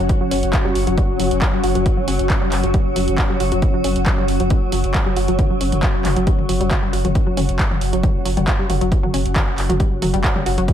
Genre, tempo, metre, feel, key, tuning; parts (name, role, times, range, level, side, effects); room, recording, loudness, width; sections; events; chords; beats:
driving peak-time techno; 136 BPM; 4/4; straight; A4 = 439 Hz
analog pluck; riff; 0.0-10.6 s; F#3 to F#4; -24 LUFS; left 1 dB; chorus, tube saturation, sidechain pumping, ping-pong delay
saturated sub bass; bass; 0.0-10.7 s; F#1; -22 LUFS; equal; sidechain pumping, low-pass filter
swarming drone; drone; 0.0-10.7 s; F#3 to F#4; -25 LUFS; equal; built-in reverb, sidechain pumping
granular cloud pad; texture; 0.0-10.7 s; C#4 to F#5; -25 LUFS; left 1 dB; built-in reverb, sidechain pumping
electronic kick drum; drums; 0.1-10.7 s; -19 LUFS; equal
punchy analog drum machine; drums; 0.1-10.7 s; handclaps, hi-hat, toms; -24 LUFS; equal; sidechain pumping on hats, sidechain pumping on cymbals, sidechain pumping on toms
light reverb, digital ambience; -16 LUFS; side -10 dB against mid
0.0-10.7 A section
filter sweep on synth arpeggio sound 0.0-10.7
0.0 F#5
| 0.09 0.53 0.97 1.42 | 1.86 2.30 2.74 3.18 | 3.62 4.06 4.50 4.95 | 5.39 5.83 6.27 6.71 | 7.15 7.59 8.03 8.47 | 8.92 9.36 9.80 10.24 | 10.68